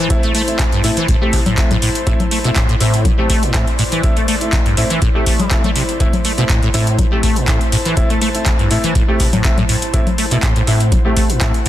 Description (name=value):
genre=acid house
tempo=122 BPM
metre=4/4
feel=swing 53% on 16ths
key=A dorian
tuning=A4 = 440 Hz
part: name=acid bass, saw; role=riff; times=0.0-11.7 s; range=G2 to A3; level=-18 LUFS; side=equal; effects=ensemble chorus, sidechain pumping, digital delay
part: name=airy breathy pad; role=texture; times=0.0-11.7 s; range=E4 to A5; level=-24 LUFS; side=left 1 dB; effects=chorus, sidechain pumping
part: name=warm concert grand piano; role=stabs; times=0.1-11.5 s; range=A3 to G4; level=-24 LUFS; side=equal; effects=digital delay
part: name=booming analog drum machine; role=drums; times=0.1-11.7 s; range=congas, handclaps, hi-hat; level=-20 LUFS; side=left 2 dB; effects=none
part: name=electronic kick drum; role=drums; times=0.1-11.5 s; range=none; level=-16 LUFS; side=equal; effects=none
room=light reverb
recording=dense, heavily limited modern master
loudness=-12 LUFS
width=side -13 dB against mid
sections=0.0-11.7 A section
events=none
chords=0.0 Am